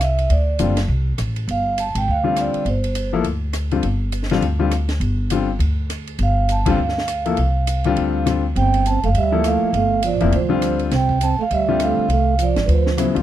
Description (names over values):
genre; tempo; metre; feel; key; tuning
modal jazz; 204 BPM; 4/4; swing 60% on 8ths; unclear; A4 = 440 Hz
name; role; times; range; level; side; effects
vibraphone with soft mallets; melody; 0.0-3.1, 6.2-13.1 s; B4 to A5; -22 LUFS; right 4 dB; none
upright bass; bass; 0.0-13.2 s; F1 to D2; -20 LUFS; equal; none
compact cocktail drum kit; drums; 0.0-13.2 s; hi-hat, kick drum, ride cymbal, rim click, snare drum; -30 LUFS; right 1 dB; none
clear concert grand piano; accompaniment; 0.6-13.2 s; C3 to A4; -20 LUFS; left 7 dB; none
breathy trombone; second line; 8.6-13.1 s; D3 to C4; -23 LUFS; right 11 dB; none
room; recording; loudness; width
little or no reverb; dry, close 1970s-style studio recording; -17 LUFS; side -12 dB against mid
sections
0.0-13.2 A section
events
band accent 6.6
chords
0.0 G7sus4